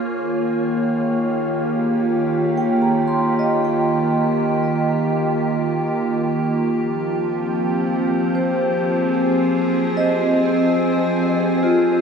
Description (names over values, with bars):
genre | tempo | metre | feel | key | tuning
ambient | 73 BPM | 4/4 | straight | unclear | A4 = 440 Hz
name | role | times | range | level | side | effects
evolving wavetable pad | sustained chords | 0.0-12.0 s | Eb3 to Db5 | -18 LUFS | equal | chorus, built-in reverb
vibraphone with medium mallets | arpeggios | 0.0-12.0 s | F4 to C6 | -23 LUFS | right 2 dB | tape echo
room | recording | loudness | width
wet cathedral reverb, RT60 5.0 s | in a vast, echoing space | -17 LUFS | side -6 dB against mid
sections
0.0-12.0 A section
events
filter sweep on ambient pad 0.0-12.0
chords
0.1 Eb7; 6.7 Fm7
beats
| 0.07 0.91 1.75 2.59 | 3.41 4.24 5.06 5.89 | 6.71 7.53 8.35 9.17 | 9.99 10.82 11.65